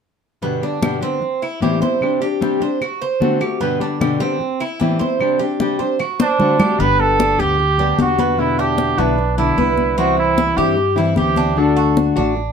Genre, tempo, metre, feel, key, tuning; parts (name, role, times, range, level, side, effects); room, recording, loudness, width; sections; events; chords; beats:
latin, Cuban son and guajira; 151 BPM; 4/4; straight; G major; A4 = 439 Hz
nylon-string guitar; accompaniment; 0.4-12.4 s; G2 to G4; -19 LUFS; left 4 dB
Cuban tres; arpeggios; 0.4-12.5 s; B3 to C5; -21 LUFS; right 4 dB
congas; percussion; 0.4-12.5 s; -22 LUFS; left 3 dB
claves; percussion; 0.8-6.8 s; -29 LUFS; right 1 dB
warm trumpet; melody; 6.2-12.0 s; D4 to B4; -18 LUFS; right 3 dB
upright bass; bass; 6.8-12.5 s; G1 to G2; -22 LUFS; equal
moderate studio reverb, RT60 0.7 s; minimal, uncompressed stereo recording; -15 LUFS; side -6 dB against mid
0.4-6.8 A section; 6.8-12.5 B section
drum fill 6.2-6.8
0.4 G; 1.2 Am7; 2.0 Csus2; 2.8 D7; 3.6 G; 4.4 Am7; 5.2 Csus2; 6.0 D7; 6.8 Gadd9; 8.4 Em7; 10.0 C; 11.6 D
| 0.42 0.82 1.22 1.62 | 2.02 2.42 2.81 3.21 | 3.61 4.01 4.41 4.80 | 5.20 5.60 6.00 6.40 | 6.79 7.19 7.59 7.99 | 8.39 8.78 9.18 9.58 | 9.98 10.38 10.77 11.17 | 11.57 11.97 12.36